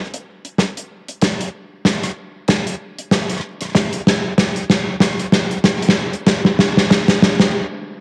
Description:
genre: glitch hop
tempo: 95 BPM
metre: 4/4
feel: swing 57% on 16ths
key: none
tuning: none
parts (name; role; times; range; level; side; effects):
- gated 80s drum kit; drums; 0.1-7.5 s; hi-hat, rim click, snare drum; -17 LUFS; equal; cassette tape
- electronic kick drum; drums; 0.6-7.1 s; none; -29 LUFS; equal; none
room: moderate spring reverb, RT60 2.4 s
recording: home recording on cassette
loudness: -17 LUFS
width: mono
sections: 0.0-8.0 A section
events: build-up 0.0-8.0; drum fill 0.0-7.5; stop 7.5-8.0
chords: none

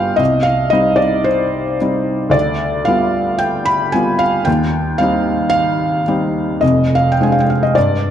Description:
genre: classical, romantic nocturne for solo piano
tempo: 56 BPM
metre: 4/4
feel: rubato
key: C minor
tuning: A4 = 440 Hz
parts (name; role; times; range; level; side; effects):
- felt-muted upright piano; solo; 0.0-8.1 s; F1 to D6; -13 LUFS; equal; none
room: wet recital hall reverb, RT60 1.7 s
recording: dark, warm production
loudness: -13 LUFS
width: side -9 dB against mid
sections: 0.0-8.1 A section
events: none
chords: 0.2 Cm; 2.3 G7/D; 4.5 Cm/Eb; 6.6 Dm7b5/F

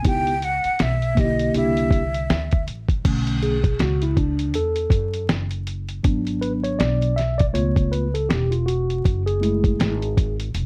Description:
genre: hip hop, jazz-hop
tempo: 80 BPM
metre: 4/4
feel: swing 59% on 16ths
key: B dorian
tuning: A4 = 440 Hz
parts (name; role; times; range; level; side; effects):
- breathy mellow silver concert flute; melody; 0.0-2.6 s; D#5 to G5; -26 LUFS; equal; plate reverb
- mellow tine electric piano; accompaniment; 0.0-10.4 s; D3 to E5; -26 LUFS; equal; none
- upright bass; bass; 0.0-10.7 s; E1 to F#2; -27 LUFS; equal; none
- lo-fi sampler-style drum kit; drums; 0.0-10.7 s; crash cymbal, hi-hat, kick drum, snare drum; -24 LUFS; equal; none
room: moderate small room reverb, RT60 0.5 s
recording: dark, warm production, vinyl crackle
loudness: -22 LUFS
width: mono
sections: 0.0-3.0 A section; 3.0-10.7 B section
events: tine electric piano solo 3.0-10.7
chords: 0.0 C#m7b5; 1.5 C9; 3.0 Bm9; 6.0 G#m7b5; 7.5 C#7alt; 9.0 F#m9

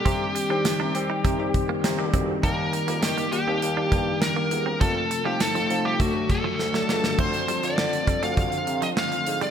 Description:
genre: 1980s-style pop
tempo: 101 BPM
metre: 4/4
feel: straight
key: unclear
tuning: A4 = 444 Hz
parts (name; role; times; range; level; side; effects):
- smooth overdriven lead guitar; melody; 0.0-9.5 s; F#4 to F5; -26 LUFS; equal; ping-pong delay
- bell-like tine electric piano; accompaniment; 0.0-9.5 s; Eb3 to C5; -28 LUFS; left 4 dB; lush chorus
- sweeping resonant pad; sustained chords; 0.0-9.5 s; C3 to G4; -34 LUFS; right 1 dB; chorus
- direct-recorded clean electric guitar; riff; 0.1-9.5 s; F3 to Eb4; -34 LUFS; right 7 dB; lush chorus, ping-pong delay
- mellow bassoon; bass; 0.1-9.5 s; C#2 to C4; -32 LUFS; right 1 dB; none
- modern studio drum kit; drums; 0.1-9.5 s; crash cymbal, hi-hat, kick drum, snare drum; -26 LUFS; equal; gated reverb
room: moderate lush hall reverb, RT60 2.1 s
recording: bright 1980s-style digital production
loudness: -22 LUFS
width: side -8 dB against mid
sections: 0.0-7.2 A section; 7.2-9.5 B section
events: drum fill 6.6-7.2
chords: 0.1 Cm; 2.4 Eb; 4.8 F; 6.0 D; 7.2 Dm7

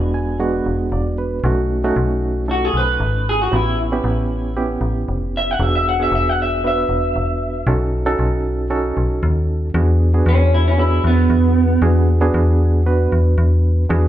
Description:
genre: straight-eighth soul blues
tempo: 116 BPM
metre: 4/4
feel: straight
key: E mixolydian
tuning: A4 = 441 Hz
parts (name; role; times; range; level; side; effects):
- bright reed electric piano; accompaniment; 0.0-14.1 s; G#3 to G#5; -21 LUFS; right 2 dB; fast tremolo, slapback echo
- metallic FM bass; bass; 0.0-14.1 s; E1 to E2; -17 LUFS; equal; none
- electric guitar through a small old amp; melody; 2.5-12.1 s; B3 to F#5; -19 LUFS; right 1 dB; lush chorus, slapback echo
room: digital ambience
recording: live gig heard through the venue's PA, club reverb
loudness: -15 LUFS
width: side -12 dB against mid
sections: 0.0-9.7 A section; 9.7-14.1 A section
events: reed electric piano fill 0.0-1.4; clean electric guitar solo 0.0-9.7, 9.7-14.1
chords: 0.0 E9; 1.4 B9; 3.5 A9; 5.6 E9; 7.7 B9; 9.7 E9

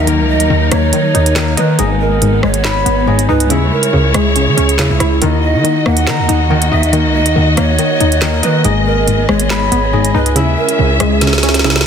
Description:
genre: hip hop, drill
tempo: 140 BPM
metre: 4/4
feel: half-time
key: Eb phrygian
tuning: A4 = 439 Hz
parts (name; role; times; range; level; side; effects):
- breathy large pan pipes; second line; 0.0-11.9 s; Ab4 to Gb5; -19 LUFS; right 8 dB; ping-pong delay
- glassy wavetable pluck; accompaniment; 0.0-11.9 s; Ab2 to Eb5; -16 LUFS; left 2 dB; chorus
- dark symphonic string section; sustained chords; 0.0-11.9 s; Gb3 to Fb5; -19 LUFS; left 2 dB; none
- concert harp; arpeggios; 0.0-11.9 s; Eb3 to Cb6; -18 LUFS; left 2 dB; ping-pong delay
- distorted 808-style bass; bass; 0.0-11.9 s; Ab1 to Fb3; -16 LUFS; equal; distortion
- drill drum kit; drums; 0.1-11.9 s; handclaps, hi-hat, rim click, snare drum; -18 LUFS; right 2 dB; none
room: light reverb, small room reverb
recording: dense, heavily limited modern master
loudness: -10 LUFS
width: side -7 dB against mid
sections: 0.0-11.9 A section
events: drum fill 11.2-11.9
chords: 0.0 Ebm; 1.8 Abm; 3.5 Dbm; 5.2 Ebm; 8.6 Abm; 10.4 Dbm

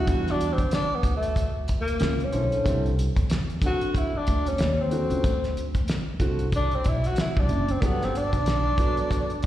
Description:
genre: hip hop, jazz-hop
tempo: 93 BPM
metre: 4/4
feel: swing 58% on 16ths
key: unclear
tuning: A4 = 438 Hz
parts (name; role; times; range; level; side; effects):
- breathy tenor saxophone; melody; 0.0-9.5 s; A3 to F#4; -27 LUFS; left 1 dB; slapback echo
- warm upright piano; accompaniment; 0.0-9.3 s; D3 to C5; -30 LUFS; right 3 dB; slapback echo
- upright bass; bass; 0.0-9.5 s; F#1 to E2; -27 LUFS; equal; none
- cloth-damped thuddy drum kit; drums; 0.1-9.5 s; hi-hat, kick drum, snare drum; -27 LUFS; equal; none
room: light reverb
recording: live gig heard through the venue's PA, recital hall reverb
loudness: -22 LUFS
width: side -13 dB against mid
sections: 0.0-9.5 A section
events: tenor saxophone solo 0.0-9.5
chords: 0.1 Em9; 2.0 Bm11; 2.7 C69; 4.6 D7b9; 5.2 D7; 7.8 Gmaj9

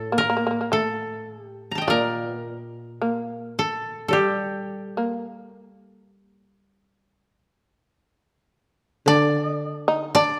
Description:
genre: japanese traditional, Japanese chamber music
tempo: 51-56 BPM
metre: 4/4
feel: rubato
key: D miyako bushi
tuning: A4 = 442 Hz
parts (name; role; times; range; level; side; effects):
- koto; melody; 0.0-10.4 s; G4 to Bb5; -27 LUFS; equal; none
- shamisen; second line; 0.0-10.4 s; G3 to Eb4; -27 LUFS; equal; none
- koto; accompaniment; 0.0-10.4 s; A2 to G3; -30 LUFS; equal; none
room: moderate recital hall reverb, RT60 1.6 s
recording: none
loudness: -24 LUFS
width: mono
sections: 0.0-10.4 A section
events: none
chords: none

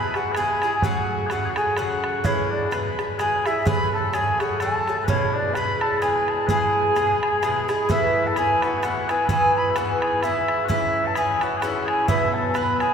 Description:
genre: celtic folk, Celtic waltz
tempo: 128 BPM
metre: 3/4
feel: swing 56% on 8ths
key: E mixolydian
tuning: A4 = 441 Hz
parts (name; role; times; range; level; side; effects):
- mellow wooden flute; melody; 0.0-12.9 s; C#5 to B5; -23 LUFS; right 1 dB; none
- mellow small bagpipes; second line; 0.0-12.9 s; C#4 to B4; -27 LUFS; left 4 dB; none
- Irish bouzouki; accompaniment; 0.0-12.9 s; G#2 to G#4; -25 LUFS; left 1 dB; none
- bodhran; percussion; 0.1-12.9 s; none; -27 LUFS; right 2 dB; none
room: wet cathedral reverb, RT60 4.3 s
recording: recorded in a church or concert hall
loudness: -20 LUFS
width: side -7 dB against mid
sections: 0.0-7.9 A section; 7.9-12.9 B section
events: none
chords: 0.0 E; 0.8 F#madd9; 2.2 E; 3.7 F#madd9; 5.1 E; 7.9 Asus2; 9.3 E; 10.7 C#m; 12.1 Bsus4

